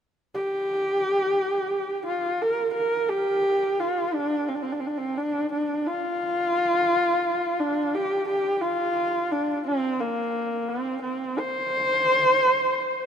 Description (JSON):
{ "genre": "mongolian traditional", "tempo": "87 BPM", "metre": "4/4", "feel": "straight", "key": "unclear", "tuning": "A4 = 440 Hz", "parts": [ { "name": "rich horsehead fiddle", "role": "solo", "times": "0.3-13.1 s", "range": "Bb3 to C5", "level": "-22 LUFS", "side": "equal", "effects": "none" } ], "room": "moderate huge ambient reverb, RT60 4.0 s", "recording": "minimal, uncompressed stereo recording", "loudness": "-22 LUFS", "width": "side -8 dB against mid", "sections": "0.7-13.1 A section", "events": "none", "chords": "none" }